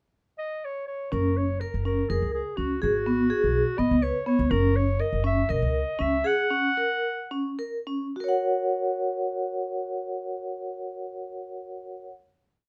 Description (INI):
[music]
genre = contemporary instrumental, chamber music in an uneven meter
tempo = 206-248 BPM (eighths)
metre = 7/8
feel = straight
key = F# major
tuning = A4 = 439 Hz
[part]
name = warm clarinet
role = melody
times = 0.4-7.6 s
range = F#4 to F#5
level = -31 LUFS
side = equal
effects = none
[part]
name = vibraphone with medium mallets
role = arpeggios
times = 1.1-12.1 s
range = B3 to F#5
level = -29 LUFS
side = equal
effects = none
[part]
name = upright bass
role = bass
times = 1.1-6.2 s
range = E1 to C#2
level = -30 LUFS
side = equal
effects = none
[sound]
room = light reverb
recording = none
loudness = -26 LUFS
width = mono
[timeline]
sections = 0.0-1.1 pickup bar; 1.1-8.2 A section; 8.2-12.2 final chord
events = slowing down 4.5-8.2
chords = 0.0 N.C.; 1.1 F#; 2.8 G#m7; 4.5 F#6; 6.3 F#